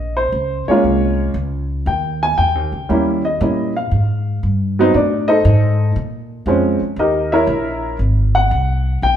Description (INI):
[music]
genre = jazz piano trio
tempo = 117 BPM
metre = 4/4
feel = swing 69% on 8ths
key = Ab major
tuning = A4 = 440 Hz
[part]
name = warm upright piano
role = melody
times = 0.0-9.2 s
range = F3 to Ab5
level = -16 LUFS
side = equal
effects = none
[part]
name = upright bass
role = bass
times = 0.0-9.2 s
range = Ab1 to Bb2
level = -18 LUFS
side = equal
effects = none
[sound]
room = moderate large studio reverb, RT60 1.3 s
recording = band playing live in one room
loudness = -14 LUFS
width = side -9 dB against mid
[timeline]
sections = 0.0-9.2 A section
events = none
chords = 0.0 Bbm7; 1.9 Eb7b9; 3.9 Abmaj7(no3); 4.9 Adim; 6.0 Bbm9; 7.0 Eb7b9; 8.0 Abadd9